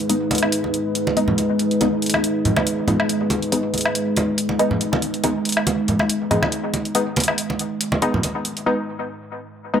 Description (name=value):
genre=deep dubstep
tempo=140 BPM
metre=4/4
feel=swing 55% on 16ths, half-time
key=G# minor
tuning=A4 = 444 Hz
part: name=deep dark ambient pad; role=sustained chords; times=0.0-8.6 s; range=G#3 to B4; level=-22 LUFS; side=equal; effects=chorus, built-in reverb
part: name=electronic hi-hat and woodblock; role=drums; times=0.0-8.6 s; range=none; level=-23 LUFS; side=left 1 dB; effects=overdrive
part: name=filtered dub chord stab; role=stabs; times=0.1-9.8 s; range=G#3 to D#4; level=-24 LUFS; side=left 1 dB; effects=analog chorus, dub echo
part: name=congas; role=percussion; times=0.3-8.3 s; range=none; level=-24 LUFS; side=right 2 dB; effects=dub echo
room=moderate spring reverb, RT60 1.3 s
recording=none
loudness=-18 LUFS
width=side -8 dB against mid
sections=0.0-9.8 A section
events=filter sweep on synth stab 0.0-9.8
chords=0.0 G#m